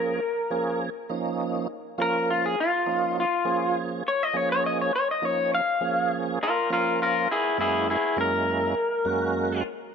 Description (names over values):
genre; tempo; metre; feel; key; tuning
blues; 102 BPM; 4/4; straight; Bb minor; A4 = 439 Hz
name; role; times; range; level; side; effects
electric guitar through a small old amp; melody; 0.0-9.6 s; Fb4 to F5; -24 LUFS; left 2 dB; none
tonewheel organ; accompaniment; 0.0-9.6 s; Gb2 to Ab4; -29 LUFS; right 5 dB; slow rotary speaker, overdrive, chorus vibrato
room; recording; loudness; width
moderate plate reverb, RT60 3.6 s; nothing above 7.6 kHz; -23 LUFS; side -6 dB against mid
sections
0.0-9.9 A section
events
clean electric guitar solo 0.0-9.9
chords
0.0 Bbm; 7.3 Gb7